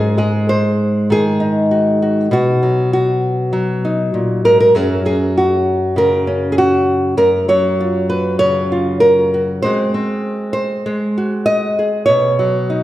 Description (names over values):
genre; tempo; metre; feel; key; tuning
folk, solo fingerstyle acoustic guitar; 98 BPM; 4/4; straight; F# major; A4 = 445 Hz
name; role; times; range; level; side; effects
nylon-string guitar; solo; 0.0-12.8 s; F#2 to D#5; -13 LUFS; equal; none
room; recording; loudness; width
wet recital hall reverb, RT60 1.5 s; recorded in a church or concert hall; -13 LUFS; side -14 dB against mid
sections
0.0-12.8 A section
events
none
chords
0.0 G#7; 2.3 B; 4.8 F#maj7; 9.6 G#7; 12.1 Badd9